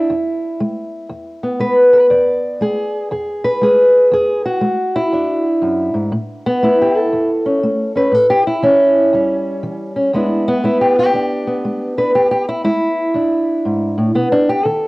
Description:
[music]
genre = acoustic country blues, solo or duo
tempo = 120 BPM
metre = 4/4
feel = swing 65% on 8ths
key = E mixolydian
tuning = A4 = 440 Hz
[part]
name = fingerpicked old ladder-braced acoustic guitar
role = solo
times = 0.0-14.9 s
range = E2 to D5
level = -13 LUFS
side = equal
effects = none
[sound]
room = light reverb, small room reverb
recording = home recording on cassette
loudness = -13 LUFS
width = side -22 dB against mid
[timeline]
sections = 0.0-14.9 A section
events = none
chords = 0.0 E7; 6.1 A7; 10.1 E7; 14.1 B7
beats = | 0.09 0.59 1.09 1.59 | 2.10 2.60 3.10 3.60 | 4.11 4.61 5.11 5.61 | 6.11 6.62 7.12 7.62 | 8.12 8.62 9.12 9.62 | 10.13 10.63 11.13 11.63 | 12.13 12.63 13.14 13.64 | 14.14 14.64

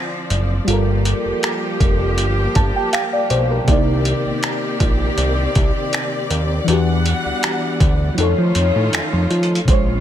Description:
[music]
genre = contemporary R&B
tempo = 80 BPM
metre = 4/4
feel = swing 54% on 16ths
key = unclear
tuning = A4 = 440 Hz
[part]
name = mellow FM electric piano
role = accompaniment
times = 0.0-10.0 s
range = Bb2 to A5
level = -22 LUFS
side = left 1 dB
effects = chorus, phaser
[part]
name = clear studio string section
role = sustained chords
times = 0.0-10.0 s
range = Eb3 to F#5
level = -23 LUFS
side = equal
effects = none
[part]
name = fat analog bass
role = bass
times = 0.3-10.0 s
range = F1 to F3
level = -19 LUFS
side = equal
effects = none
[part]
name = dusty soul sampler-style drum kit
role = drums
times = 0.3-9.9 s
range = finger snaps, hi-hat, kick drum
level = -19 LUFS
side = equal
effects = overdrive
[sound]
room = little or no reverb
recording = none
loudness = -15 LUFS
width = side -10 dB against mid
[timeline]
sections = 0.0-9.7 A section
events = FM electric piano fill 2.2-3.7; kick muted 8.2-9.7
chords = 0.0 Dm9; 0.7 Gm9; 3.7 Cm9; 6.7 Em9; 8.2 F7b13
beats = | 0.68 1.43 2.18 2.93 | 3.68 4.43 5.18 5.93 | 6.68 7.43 8.18 8.93 | 9.68

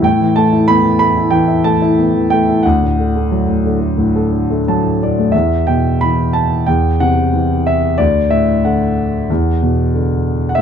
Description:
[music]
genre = classical, lyrical solo piano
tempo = 91 BPM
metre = 4/4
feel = rubato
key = E minor from 5.3 s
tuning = A4 = 439 Hz
[part]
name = dark baby grand piano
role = solo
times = 0.0-10.6 s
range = D2 to B5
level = -12 LUFS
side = equal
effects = none
[sound]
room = light reverb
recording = dark, warm production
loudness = -12 LUFS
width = side -8 dB against mid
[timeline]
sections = 0.0-5.3 A section; 5.3-10.6 B section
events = grand piano fill 4.3-5.3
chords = 0.0 Asus2; 2.6 D; 5.3 E5; 6.7 C/E; 8.0 D; 9.3 E5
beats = | 0.04 0.68 1.33 1.98 | 2.64 3.30 3.96 4.65 | 5.33 6.00 6.67 7.33 | 7.99 8.64 9.29 9.94 | 10.58

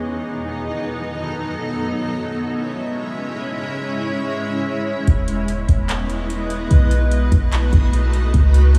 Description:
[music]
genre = hip hop, atmospheric cloud-rap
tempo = 147 BPM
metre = 4/4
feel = half-time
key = unclear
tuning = A4 = 437 Hz
[part]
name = granular cloud pad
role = sustained chords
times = 0.0-8.8 s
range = G#3 to E5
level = -25 LUFS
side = equal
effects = built-in reverb, lush chorus
[part]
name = clean 808-style bass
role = bass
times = 5.1-8.8 s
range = E1 to C#2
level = -18 LUFS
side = equal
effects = none
[part]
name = booming analog drum machine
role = drums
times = 5.1-8.8 s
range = handclaps, hi-hat, kick drum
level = -22 LUFS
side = equal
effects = none
[part]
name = backwards swelling texture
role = texture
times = 5.1-8.8 s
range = G#3 to D#5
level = -36 LUFS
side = equal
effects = built-in reverb
[sound]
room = moderate huge ambient reverb, RT60 6.1 s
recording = dreamy mix soaked in reverb, small room ambience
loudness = -20 LUFS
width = mono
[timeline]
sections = 0.0-8.8 A section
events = none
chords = 0.2 B7; 1.8 C#m; 5.1 Emaj7; 6.7 B7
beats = | 0.18 0.58 0.99 1.40 | 1.81 2.22 2.62 3.03 | 3.44 3.85 4.26 4.67 | 5.07 5.48 5.89 6.30 | 6.71 7.12 7.52 7.93 | 8.34 8.75

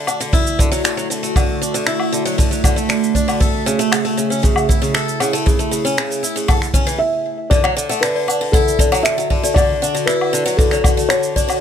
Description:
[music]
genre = folktronica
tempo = 117 BPM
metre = 4/4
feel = straight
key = D major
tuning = A4 = 437 Hz
[part]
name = warbly tape-like pad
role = sustained chords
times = 0.2-11.6 s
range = C#3 to E5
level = -23 LUFS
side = right 1 dB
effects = chorus, built-in reverb, phaser
[part]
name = picked swing-style acoustic guitar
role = arpeggios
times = 0.0-11.6 s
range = C#3 to A4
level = -21 LUFS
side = equal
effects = low-pass filter, ping-pong delay, plate reverb
[part]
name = vintage brush drum kit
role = drums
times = 0.1-11.6 s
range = cabasa, finger snaps, hi-hat, woodblock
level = -22 LUFS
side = left 1 dB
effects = none
[part]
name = kick drum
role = drums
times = 0.3-11.5 s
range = none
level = -16 LUFS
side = equal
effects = none
[part]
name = felt-muted upright piano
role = melody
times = 7.0-11.6 s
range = A4 to E5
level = -19 LUFS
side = left 1 dB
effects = vintage 12-bit sampler grit, ping-pong delay, plate reverb
[part]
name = toy piano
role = second line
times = 7.5-11.5 s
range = D5 to F#5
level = -25 LUFS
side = left 4 dB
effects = digital delay, plate reverb
[sound]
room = light reverb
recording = none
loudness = -14 LUFS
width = side -8 dB against mid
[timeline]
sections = 0.0-7.5 A section; 7.5-11.6 B section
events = stop 7.0-7.5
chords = 0.0 Dadd9; 3.4 A/C#; 7.5 D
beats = 0.33 0.85 | 1.36 1.87 2.38 2.90 | 3.41 3.92 4.43 4.95 | 5.46 5.97 6.49 7.00 | 7.51 8.03 8.54 9.05 | 9.56 10.08 10.59 11.10

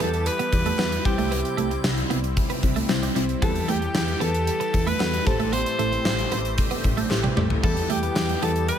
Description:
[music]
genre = 1980s-style pop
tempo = 114 BPM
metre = 4/4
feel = straight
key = E minor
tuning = A4 = 440 Hz
[part]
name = clear alto saxophone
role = melody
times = 0.0-8.8 s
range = G4 to C5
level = -28 LUFS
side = left 1 dB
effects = ping-pong delay, shimmer reverb
[part]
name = shimmering bell with halo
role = second line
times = 0.0-8.8 s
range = G5 to C6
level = -37 LUFS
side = right 1 dB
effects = none
[part]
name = glassy digital keys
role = accompaniment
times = 0.0-8.8 s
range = A2 to C5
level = -30 LUFS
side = left 2 dB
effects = chorus, shimmer reverb
[part]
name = phased analog pad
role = sustained chords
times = 0.0-8.8 s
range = E3 to G4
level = -33 LUFS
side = equal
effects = phaser, chorus, shimmer reverb
[part]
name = twelve-string electric guitar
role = riff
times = 0.0-8.5 s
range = G3 to B3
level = -31 LUFS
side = right 9 dB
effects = wide subtle chorus, shimmer reverb
[part]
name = solid FM bass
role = bass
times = 0.0-8.7 s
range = A1 to E2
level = -27 LUFS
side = equal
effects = none
[part]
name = gated 80s drum kit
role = drums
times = 0.0-8.8 s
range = hi-hat, kick drum, snare drum, splash cymbal, tambourine, toms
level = -26 LUFS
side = equal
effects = none
[part]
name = group handclap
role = percussion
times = 0.8-8.3 s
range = none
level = barely audible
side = none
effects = none
[sound]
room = light reverb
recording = none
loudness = -21 LUFS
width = side -9 dB against mid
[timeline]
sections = 0.0-8.8 A section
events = drum fill 7.1-7.6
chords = 0.0 Emadd9; 1.1 C; 3.4 Emadd9; 5.3 Am7; 7.6 Em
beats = 0.27 0.79 | 1.32 1.84 2.37 2.90 | 3.42 3.95 4.47 5.00 | 5.53 6.05 6.58 7.11 | 7.63 8.16 8.69

